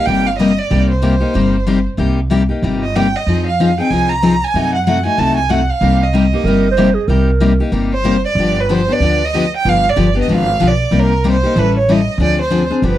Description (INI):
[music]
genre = acoustic string swing (jazz manouche)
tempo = 188 BPM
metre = 4/4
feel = swing 60% on 8ths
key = C minor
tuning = A4 = 440 Hz
[part]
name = rich violin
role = melody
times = 0.0-13.0 s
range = Bb4 to Bb5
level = -17 LUFS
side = right 4 dB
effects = none
[part]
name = picked steel-string acoustic guitar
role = accompaniment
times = 0.0-13.0 s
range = C3 to A4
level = -15 LUFS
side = left 4 dB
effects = none
[part]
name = upright bass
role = bass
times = 0.1-13.0 s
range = G1 to F#2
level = -17 LUFS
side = right 1 dB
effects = none
[part]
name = breathy clarinet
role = second line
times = 6.3-7.7 s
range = G4 to C5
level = -18 LUFS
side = right 7 dB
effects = none
[sound]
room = studio ambience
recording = dry, close 1970s-style studio recording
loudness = -12 LUFS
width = side -13 dB against mid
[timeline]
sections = 0.0-13.0 A section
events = none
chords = 0.0 Cm7; 3.3 Fm7; 4.5 F#dim7; 5.8 Cm7; 8.4 G7; 10.9 Cm7; 11.6 A7; 12.2 Dm7b5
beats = 0.08 0.40 | 0.72 1.04 1.36 1.68 | 1.99 2.31 2.63 2.95 | 3.27 3.59 3.90 4.22 | 4.54 4.86 5.18 5.50 | 5.82 6.14 6.46 6.78 | 7.09 7.41 7.73 8.05 | 8.37 8.69 9.01 9.33 | 9.64 9.96 10.28 10.60 | 10.92 11.24 11.56 11.88 | 12.20 12.52 12.84